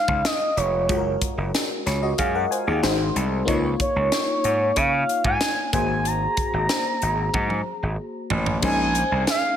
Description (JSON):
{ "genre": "polished 1980s jazz-funk pop", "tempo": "93 BPM", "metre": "4/4", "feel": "straight", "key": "unclear", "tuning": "A4 = 440 Hz", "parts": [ { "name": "expressive portamento lead", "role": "melody", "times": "0.0-9.6 s", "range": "Db5 to Bb5", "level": "-23 LUFS", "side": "right 1 dB", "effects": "chorus" }, { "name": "FM electric piano", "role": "accompaniment", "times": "0.0-9.6 s", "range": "Ab3 to Ab5", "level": "-27 LUFS", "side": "left 2 dB", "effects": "lush chorus" }, { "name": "gritty slap bass", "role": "bass", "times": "0.1-9.2 s", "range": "F1 to Db3", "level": "-24 LUFS", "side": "equal", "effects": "overdrive" }, { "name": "crisp fusion drum kit", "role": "drums", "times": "0.1-9.4 s", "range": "crash cymbal, hi-hat, kick drum, snare drum, toms", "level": "-26 LUFS", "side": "equal", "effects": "gated reverb" } ], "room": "light reverb, small room ambience", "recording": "none", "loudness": "-20 LUFS", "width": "side -9 dB against mid", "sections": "0.0-8.6 A section", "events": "drum fill 7.3-8.6", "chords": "0.0 Fm7; 0.9 Gbmaj9; 2.8 Ab7; 3.5 Db69; 5.7 Ab9; 8.6 Bbm11", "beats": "0.24 | 0.89 1.54 2.18 2.83 | 3.47 4.12 4.76 5.41 | 6.05 6.70 7.34 7.99 | 8.63 9.28" }